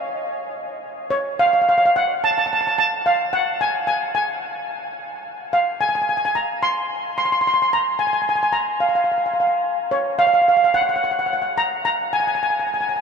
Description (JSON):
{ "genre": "calypso", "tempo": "109 BPM", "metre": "4/4", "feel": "straight", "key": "unclear", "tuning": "A4 = 441 Hz", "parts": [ { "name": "steel pan", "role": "solo", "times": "0.0-13.0 s", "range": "Db5 to C6", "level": "-18 LUFS", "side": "equal", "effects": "none" } ], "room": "wet huge ambient reverb, RT60 9.3 s", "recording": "in a vast, echoing space, lossy compression artefacts", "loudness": "-17 LUFS", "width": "side -6 dB against mid", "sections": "0.0-13.0 A section", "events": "none", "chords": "none" }